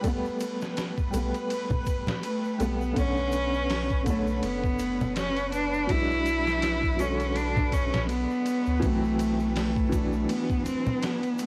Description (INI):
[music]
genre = trip hop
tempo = 82 BPM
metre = 4/4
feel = swing 57% on 16ths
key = B minor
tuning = A4 = 440 Hz
[part]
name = dark upright piano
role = accompaniment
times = 0.0-11.5 s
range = D3 to C#5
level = -35 LUFS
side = equal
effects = tremolo, tape echo
[part]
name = trip hop sampler-style drum kit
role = drums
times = 0.0-11.5 s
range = hi-hat, kick drum, ride cymbal, snare drum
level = -34 LUFS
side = equal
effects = cassette tape
[part]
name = tube shaker and congas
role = percussion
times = 0.0-11.5 s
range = none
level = -36 LUFS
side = equal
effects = none
[part]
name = backwards swelling texture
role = texture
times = 0.0-11.5 s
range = B4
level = -42 LUFS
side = equal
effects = built-in reverb
[part]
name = soft dub sub bass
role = bass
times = 1.1-10.3 s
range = F#1 to D2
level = -34 LUFS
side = equal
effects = none
[part]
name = rich cello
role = melody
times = 2.2-11.5 s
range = A3 to E4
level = -30 LUFS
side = equal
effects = cassette tape, tape echo
[sound]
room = digital ambience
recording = home recording on cassette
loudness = -27 LUFS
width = mono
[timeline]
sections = 0.0-11.5 A section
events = none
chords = 0.0 Gadd9; 3.0 Bmadd9; 5.9 E7/B; 8.8 D7/B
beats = | 0.04 0.78 1.51 2.24 | 2.97 3.70 4.43 5.17 | 5.90 6.63 7.36 8.09 | 8.82 9.55 10.29 11.02